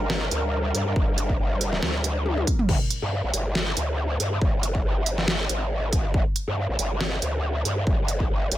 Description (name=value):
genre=heavy wobble dubstep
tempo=139 BPM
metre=4/4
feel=swing 55% on 16ths, half-time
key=G phrygian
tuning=A4 = 441 Hz
part: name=dark symphonic string section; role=sustained chords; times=0.0-2.7 s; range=G3 to Bb4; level=-32 LUFS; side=equal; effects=sidechain pumping, low-pass filter
part: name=growl bass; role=bass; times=0.0-8.6 s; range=G1 to G2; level=-25 LUFS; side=equal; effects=chorus, overdrive
part: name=dubstep drum kit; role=drums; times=0.1-8.6 s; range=crash cymbal, hi-hat, snare drum, toms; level=-27 LUFS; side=equal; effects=studio reverb
part: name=electronic kick drum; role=drums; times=1.0-8.3 s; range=none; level=-23 LUFS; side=equal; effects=studio reverb
room=digital ambience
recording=none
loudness=-22 LUFS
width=side -14 dB against mid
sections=0.0-2.7 A section; 2.7-8.6 A section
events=drop 0.0-2.7, 2.7-8.6; drum fill 2.3-2.7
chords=0.0 G5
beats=0.10 0.53 | 0.96 1.39 1.82 2.26 | 2.69 3.12 3.55 3.98 | 4.42 4.85 5.28 5.71 | 6.14 6.57 7.00 7.44 | 7.87 8.30